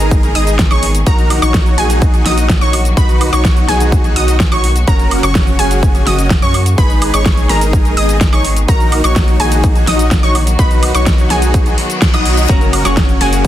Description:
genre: EDM, festival progressive house.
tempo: 126 BPM.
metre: 4/4.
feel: straight.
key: Eb minor.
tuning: A4 = 440 Hz.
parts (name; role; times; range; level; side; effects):
clear studio string section; sustained chords; 0.0-13.5 s; Db3 to Ab4; -23 LUFS; equal; sidechain pumping.
wide unison pluck; arpeggios; 0.0-13.5 s; Ab5 to Eb6; -20 LUFS; equal; cassette tape, sidechain pumping, tape echo.
dense compressed supersaw; riff; 0.0-13.5 s; Db4 to Eb5; -18 LUFS; equal; sidechain pumping, tape echo.
saturated sub bass; bass; 0.0-13.5 s; Gb1 to Gb2; -16 LUFS; equal; tube saturation, sidechain pumping.
big-room dance drum kit; drums; 0.0-13.5 s; hi-hat, ride cymbal, shaker, snare drum, woodblock; -19 LUFS; right 1 dB; overdrive, small room ambience.
electronic kick drum; drums; 0.1-13.5 s; none; -12 LUFS; equal; overdrive, small room ambience.
reverse cymbal; sound effects; 11.7-12.5 s; none; -22 LUFS; left 4 dB; none.
semi-hollow electric guitar; accompaniment; 12.5-13.5 s; Gb3 to Ab4; -20 LUFS; left 4 dB; vibrato effect, sidechain pumping, tape echo.
room: digital ambience.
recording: dense, heavily limited modern master.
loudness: -9 LUFS.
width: side -12 dB against mid.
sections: 0.0-13.5 A section.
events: reverse cymbal 11.7-12.5.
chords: 0.0 Abm; 1.1 Ebm/Bb; 3.0 B; 4.9 Gb; 6.8 Abm; 8.7 Ebm/Bb; 10.6 B; 12.5 Gb.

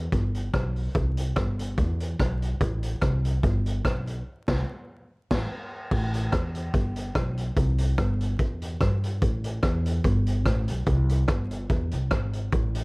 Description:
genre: ska.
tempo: 145 BPM.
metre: 4/4.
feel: swing 54% on 8ths.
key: A minor.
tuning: A4 = 440 Hz.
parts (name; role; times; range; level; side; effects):
upright bass; bass; 0.0-12.8 s; G1 to G2; -26 LUFS; equal; none.
raw garage drum kit; drums; 0.1-12.8 s; crash cymbal, hi-hat, kick drum, rim click, snare drum; -27 LUFS; equal; none.
room: little or no reverb.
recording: vinyl crackle.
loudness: -24 LUFS.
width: side -33 dB against mid.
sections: 0.0-5.9 A section; 5.9-12.8 A section.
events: band accent 4.3-5.9.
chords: none.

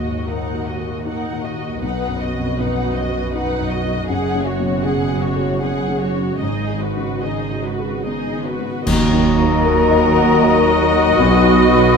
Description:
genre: cinematic, emotional film score for orchestra.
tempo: 78 BPM.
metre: 3/4.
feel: rubato.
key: unclear.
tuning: A4 = 440 Hz.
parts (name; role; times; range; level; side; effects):
muted symphonic violin section; melody; 0.0-12.0 s; B4 to F#5; -26 LUFS; left 4 dB; none.
muted studio violin section; second line; 0.0-12.0 s; F#4 to D#5; -26 LUFS; left 6 dB; none.
dark concert grand piano; accompaniment; 0.0-12.0 s; B1 to F#5; -22 LUFS; left 2 dB; none.
muted symphonic viola section; accompaniment; 0.0-12.0 s; D#4 to G#4; -24 LUFS; right 3 dB; none.
muted symphonic cello section; bass; 0.0-12.0 s; D#2 to B2; -24 LUFS; right 4 dB; none.
muted symphonic double bass section; bass; 0.0-12.0 s; F#1 to D#2; -24 LUFS; right 3 dB; none.
bright clarinet; second line; 8.9-12.0 s; F#4; -24 LUFS; right 1 dB; none.
mellow silver concert flute; second line; 8.9-12.0 s; A#5 to B5; -21 LUFS; left 4 dB; none.
warm oboe; second line; 8.9-12.0 s; D#5; -23 LUFS; equal; none.
mellow French horn section; sustained chords; 8.9-12.0 s; F#3 to D#4; -21 LUFS; left 2 dB; none.
clash cymbals and concert bass drum; percussion; 8.9-10.4 s; none; -24 LUFS; right 1 dB; none.
room: moderate scoring stage reverb, RT60 1.9 s.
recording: none.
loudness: -15 LUFS.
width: side -5 dB against mid.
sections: 0.0-8.9 A section; 8.9-12.0 B section.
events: band accent 8.9-9.7.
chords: 0.0 D#m; 1.8 B; 4.1 F#sus2; 6.4 G#m7; 8.9 D#m; 11.2 B.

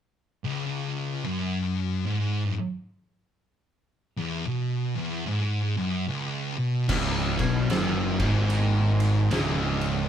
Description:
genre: stoner and doom metal.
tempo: 74 BPM.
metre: 4/4.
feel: swing 62% on 8ths.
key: C# minor.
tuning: A4 = 440 Hz.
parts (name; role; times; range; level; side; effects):
thick fuzz guitar; riff; 0.4-10.1 s; C#2 to B2; -29 LUFS; left 5 dB; distortion.
thick fuzz guitar; riff; 0.4-10.1 s; C#2 to B2; -28 LUFS; right 3 dB; distortion.
biting overdriven guitar; riff; 6.9-10.1 s; C#2 to B2; -29 LUFS; right 1 dB; none.
fuzz picked electric bass; bass; 6.9-10.1 s; C#1 to B1; -31 LUFS; equal; overdrive.
oversized low-tuned drum kit; drums; 6.9-10.0 s; crash cymbal, kick drum, ride cymbal, snare drum; -29 LUFS; equal; none.
room: light reverb.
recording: band playing live in one room.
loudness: -24 LUFS.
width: side -9 dB against mid.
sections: 0.4-6.9 A section; 6.9-10.1 B section.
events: none.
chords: 0.4 C#m; 6.9 C#5.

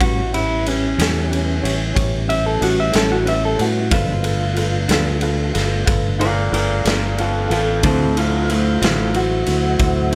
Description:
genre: slow blues.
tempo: 61 BPM (dotted quarters).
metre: 12/8.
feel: straight.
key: unclear.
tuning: A4 = 436 Hz.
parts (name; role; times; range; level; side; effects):
electric guitar through a small old amp; melody; 0.0-10.2 s; A3 to E5; -23 LUFS; equal; none.
clear upright piano; accompaniment; 0.0-10.2 s; C#4 to D5; -29 LUFS; equal; none.
semi-hollow electric guitar; accompaniment; 0.0-9.0 s; G2 to F#4; -26 LUFS; equal; tremolo.
tonewheel organ; sustained chords; 0.0-10.2 s; F#3 to E5; -30 LUFS; equal; slow rotary speaker, overdrive.
fingered electric bass; bass; 0.0-10.2 s; G1 to A2; -23 LUFS; equal; none.
raw garage drum kit; drums; 0.0-10.2 s; kick drum, ride cymbal, snare drum; -24 LUFS; equal; none.
room: light reverb.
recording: none.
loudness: -18 LUFS.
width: mono.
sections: 0.0-10.2 A section.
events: clean electric guitar solo 0.0-10.2.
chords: 0.0 A7; 3.9 G7; 7.8 D7.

